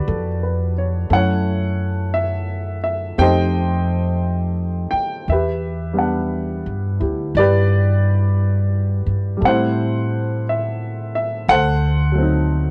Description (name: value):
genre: jazz ballad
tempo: 58 BPM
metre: 4/4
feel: swing 66% on 8ths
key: unclear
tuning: A4 = 441 Hz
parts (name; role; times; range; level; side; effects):
- warm baby grand piano; accompaniment; 0.0-12.7 s; F#3 to G5; -23 LUFS; equal; none
- upright bass; bass; 0.0-12.7 s; D2 to A2; -22 LUFS; equal; none
room: little or no reverb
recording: dry, close 1970s-style studio recording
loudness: -19 LUFS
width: mono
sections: 0.0-12.7 A section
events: none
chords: 0.0 Gmaj9; 1.1 F#m7; 3.2 F9; 5.3 Em7; 9.4 Am7; 11.5 D7b9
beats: 0.06 | 1.10 2.14 3.18 4.23 | 5.27 6.31 7.36 8.39 | 9.42 10.46 11.49 12.51